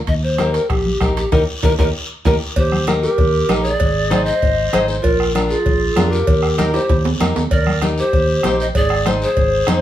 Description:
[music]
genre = latin, cumbia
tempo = 194 BPM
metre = 4/4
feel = straight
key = Eb major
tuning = A4 = 440 Hz
[part]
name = breathy mellow pan flute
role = melody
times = 0.1-9.8 s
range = G4 to Eb5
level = -20 LUFS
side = equal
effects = none
[part]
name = fingered electric bass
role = bass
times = 0.1-9.8 s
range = Ab1 to F2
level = -21 LUFS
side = equal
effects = none
[part]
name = bombo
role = percussion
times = 0.1-9.8 s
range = none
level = -20 LUFS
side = equal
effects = none
[part]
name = congas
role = percussion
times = 0.1-9.8 s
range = none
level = -25 LUFS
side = left 1 dB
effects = none
[part]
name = guiro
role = percussion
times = 0.1-9.8 s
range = none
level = -31 LUFS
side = left 2 dB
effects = none
[part]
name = timbales and cowbell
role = percussion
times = 0.1-9.8 s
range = none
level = -27 LUFS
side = right 5 dB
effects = none
[part]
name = flamenco guitar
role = accompaniment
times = 0.4-9.8 s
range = D4 to Eb5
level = -21 LUFS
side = left 3 dB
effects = none
[part]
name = warm clarinet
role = second line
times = 2.6-9.8 s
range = F4 to C5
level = -23 LUFS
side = right 3 dB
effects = none
[sound]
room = wet studio reverb, RT60 0.6 s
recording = band playing live in one room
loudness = -14 LUFS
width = side -12 dB against mid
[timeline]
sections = 0.0-2.6 A section; 2.6-9.8 B section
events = band accent 1.3-2.6; drum fill 1.8-2.6, 6.7-7.5; nylon-string guitar fill 4.6-5.0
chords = 0.1 Eb; 3.8 Ab; 5.0 Bb7; 6.3 Eb; 8.8 Ab

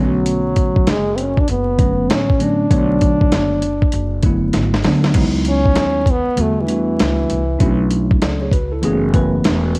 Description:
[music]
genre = hip hop, jazz-hop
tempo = 98 BPM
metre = 4/4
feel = swing 65% on 16ths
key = unclear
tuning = A4 = 440 Hz
[part]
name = mellow French horn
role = melody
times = 0.0-8.1 s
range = E3 to D4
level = -19 LUFS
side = equal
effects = cassette tape
[part]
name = mellow tine electric piano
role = accompaniment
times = 0.0-9.8 s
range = D3 to D5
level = -18 LUFS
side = equal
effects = medium stereo tremolo, cassette tape
[part]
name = upright bass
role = bass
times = 0.0-9.8 s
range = E1 to E2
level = -21 LUFS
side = equal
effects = none
[part]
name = dusty soul sampler-style drum kit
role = drums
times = 0.3-9.8 s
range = crash cymbal, hi-hat, kick drum, snare drum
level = -17 LUFS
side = equal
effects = cassette tape
[sound]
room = light reverb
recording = home recording on cassette, vinyl crackle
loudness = -13 LUFS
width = side -28 dB against mid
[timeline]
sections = 0.0-5.2 A section; 5.2-9.8 B section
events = drum fill 4.5-5.2; French horn solo 5.2-9.8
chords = 0.0 Bm9; 5.2 C#m11; 6.4 Em11; 7.6 Bm11; 8.8 F#m11

